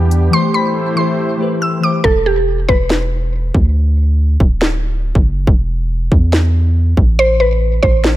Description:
hip hop, trap; 140 BPM; 4/4; half-time; E minor; A4 = 443 Hz
mallet-like synth pluck; melody; 0.0-3.7, 7.2-8.2 s; G4 to E6; -16 LUFS; right 1 dB; chorus, digital delay
glassy digital keys; accompaniment; 0.0-2.1 s; E3 to D5; -17 LUFS; left 3 dB; chorus
warm analog pad; sustained chords; 0.0-2.0 s; E3 to C5; -21 LUFS; right 2 dB; chorus
long sustained 808-style bass; bass; 0.0-8.2 s; D1 to E2; -14 LUFS; equal
trap drum kit; drums; 0.1-8.1 s; hi-hat, kick drum, snare drum; -14 LUFS; equal
digital ambience; -12 LUFS; side -15 dB against mid
0.0-2.0 A section; 2.0-8.2 B section
break 0.3-2.0; hi-hats muted 2.0-8.2
0.3 Am7; 2.0 E5; 3.8 D; 5.5 Esus4; 7.2 Am
| 0.33 0.76 1.19 1.62 | 2.04 2.47 2.90 3.33 | 3.76 4.19 4.62 5.04 | 5.47 5.90 6.33 6.76 | 7.19 7.62 8.04

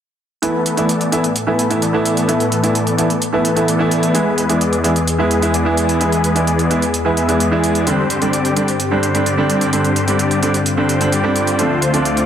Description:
EDM, festival progressive house; 129 BPM; 4/4; straight; A minor; A4 = 439 Hz
clear concert grand piano; accompaniment; 0.4-12.0 s; D3 to E4; -18 LUFS; right 3 dB; tape echo
lush unison pad; sustained chords; 1.3-12.3 s; D2 to A4; -22 LUFS; left 1 dB; chorus, phaser
supersaw chords; riff; 0.4-12.3 s; D3 to E5; -17 LUFS; left 2 dB; low-pass filter, tape echo
electronic hi-hat; drums; 0.4-12.3 s; -24 LUFS; right 1 dB
moderate lush hall reverb, RT60 1.9 s; dense, heavily limited modern master; -14 LUFS; side -9 dB against mid
0.4-12.3 A section
filter sweep on analog synth pad 0.4-12.3
0.4 Asus2; 4.1 E; 7.9 Gsus4; 11.6 Dm7
| 0.43 0.89 1.36 1.82 | 2.29 2.75 3.22 3.68 | 4.15 4.61 5.08 5.54 | 6.01 6.47 6.94 7.40 | 7.87 8.33 8.80 9.26 | 9.73 10.19 10.66 11.12 | 11.59 12.05

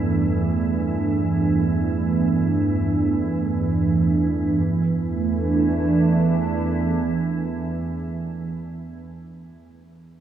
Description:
dark ambient drone; free time; E minor; A4 = 443 Hz
sweeping resonant pad; sustained chords; 0.0-8.3 s; G2 to D4; -22 LUFS; right 2 dB; chorus
warm baby grand piano; arpeggios; 0.0-10.2 s; E3; -51 LUFS; right 1 dB
organ-like drone; drone; 0.0-8.0 s; E2 to E3; -23 LUFS; right 2 dB; ensemble chorus, built-in reverb
wind-like tuned noise texture; texture; 0.0-4.6 s; E5; -48 LUFS; right 3 dB; built-in reverb
wet cathedral reverb, RT60 5.2 s; in a vast, echoing space, small room ambience; -19 LUFS; side -10 dB against mid
0.0-4.6 A section; 4.6-9.8 B section
0.0 G5; 4.6 E7sus4
free time

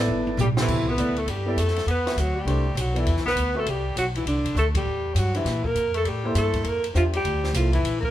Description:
modal jazz; 201 BPM; 4/4; swing 63% on 8ths; C lydian; A4 = 440 Hz
warm baby grand piano; accompaniment; 0.0-7.7 s; B2 to E5; -29 LUFS; equal
upright bass; bass; 0.0-8.1 s; G1 to Bb2; -25 LUFS; equal
compact cocktail drum kit; drums; 0.1-8.1 s; crash cymbal, hi-hat, kick drum, ride cymbal, snare drum, toms; -31 LUFS; right 1 dB
mellow alto saxophone; melody; 0.4-8.1 s; D4 to B4; -27 LUFS; right 1 dB
breathy tenor saxophone; second line; 0.4-8.1 s; D3 to B3; -30 LUFS; left 3 dB
moderate large studio reverb, RT60 1.3 s; band playing live in one room; -21 LUFS; side -13 dB against mid
0.7-8.1 A section
drum fill 0.1-0.7; band accent 4.7
0.0 G; 0.7 Cmaj9; 5.5 Bbmaj9
0.08 0.38 | 0.68 0.97 1.27 1.57 | 1.87 2.17 2.47 2.77 | 3.06 3.36 3.66 3.96 | 4.26 4.56 4.86 5.16 | 5.45 5.75 6.05 6.35 | 6.65 6.95 7.25 7.54 | 7.84

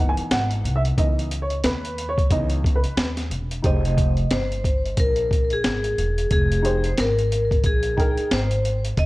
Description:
hip hop, jazz-hop; 90 BPM; 4/4; swing 60% on 16ths; A4 = 440 Hz
warm upright piano; accompaniment; 0.0-8.5 s; Fb3 to Ab5; -27 LUFS; right 1 dB
upright bass; bass; 0.0-9.1 s; Fb1 to Eb2; -24 LUFS; equal
boom bap sampler-style drum kit; drums; 0.2-9.1 s; hi-hat, kick drum, snare drum; -22 LUFS; equal
vibraphone with hard mallets; melody; 3.7-9.1 s; Ab4 to Eb5; -24 LUFS; left 1 dB; ping-pong delay
little or no reverb; worn, warbling old tape, cassette tape, warbly pitch drift; -19 LUFS; side -20 dB against mid
0.0-3.6 A section; 3.6-9.1 B section
upright piano solo 0.0-3.6
0.0 Dbm9; 3.6 Fm9
0.31 | 0.98 1.64 2.31 2.98 | 3.64 4.31 4.98 5.64 | 6.31 6.98 7.64 8.31 | 8.98

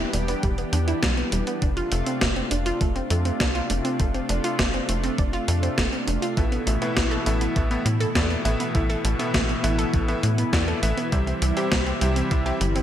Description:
synthwave; 101 BPM; 4/4; straight; A minor; A4 = 440 Hz
lush unison pad; sustained chords; 0.0-12.8 s; B2 to G4; -29 LUFS; equal; chorus, sidechain pumping
analog pluck; arpeggios; 0.0-12.8 s; G3 to A4; -29 LUFS; right 2 dB; chorus, ping-pong delay
tight sequencer bass; bass; 0.0-12.8 s; E1 to A2; -25 LUFS; equal; sidechain pumping
gated 80s digital drum machine; drums; 0.1-12.8 s; hi-hat, snare drum; -27 LUFS; equal; gated reverb, gated reverb snare
electronic kick drum; drums; 0.4-12.4 s; -25 LUFS; equal
bright electric grand piano; stabs; 6.4-12.6 s; A2 to E5; -28 LUFS; left 1 dB; ping-pong delay
moderate plate reverb, RT60 1.7 s; bright 1980s-style digital production; -21 LUFS; side -10 dB against mid
0.0-12.8 A section
0.0 Em7; 1.6 Dm7/F; 6.4 Asus2; 11.1 C
0.43 1.02 | 1.62 2.21 2.81 3.40 | 4.00 4.59 5.18 5.78 | 6.37 6.97 7.56 8.15 | 8.75 9.34 9.94 10.53 | 11.12 11.72 12.31

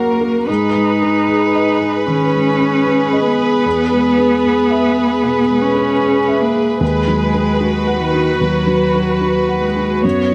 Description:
neoclassical piano and strings; 76 BPM; 4/4; rubato; A4 = 441 Hz
muted studio violin section; melody; 0.0-10.3 s; A#4 to C#5; -22 LUFS; equal; slapback echo
muted cello; second line; 0.0-10.3 s; D#3 to D#4; -19 LUFS; equal
felt-muted upright piano; accompaniment; 0.0-10.3 s; D#2 to F#5; -21 LUFS; equal
muted viola; accompaniment; 0.0-10.3 s; F#4 to G#4; -24 LUFS; equal
little or no reverb; close, detailed microphones; -15 LUFS; mono
0.0-10.3 A section
0.5 G#m; 3.7 E; 6.8 B/D#
| 0.48 1.28 2.07 2.86 | 3.65 4.44 5.23 6.02 | 6.81 7.61 8.41 9.22 | 10.04

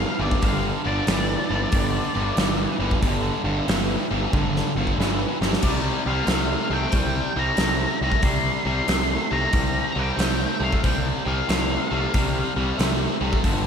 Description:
blues rock power trio and southern rock; 92 BPM; 4/4; swing 65% on 8ths; A4 = 440 Hz
octave-fuzz lead guitar; melody; 0.0-13.2 s; D5 to C6; -28 LUFS; left 2 dB; wah, distortion, slapback echo
distorted electric guitar; riff; 0.0-13.7 s; G2 to A3; -26 LUFS; equal; overdrive, slapback echo
fuzz picked electric bass; bass; 0.0-13.7 s; G1 to C2; -26 LUFS; equal; overdrive
big rock drum kit; drums; 0.3-13.6 s; crash cymbal, hi-hat, kick drum, snare drum, toms; -24 LUFS; equal
moderate lush hall reverb, RT60 2.2 s; big arena sound; -20 LUFS; side -7 dB against mid
0.0-13.7 A section
drum fill 4.3-5.6
0.0 G5; 5.6 C5
| 0.43 1.08 1.74 2.39 | 3.04 3.69 4.34 4.99 | 5.64 6.29 6.94 7.59 | 8.24 8.89 9.54 10.19 | 10.84 11.49 12.14 12.79 | 13.44

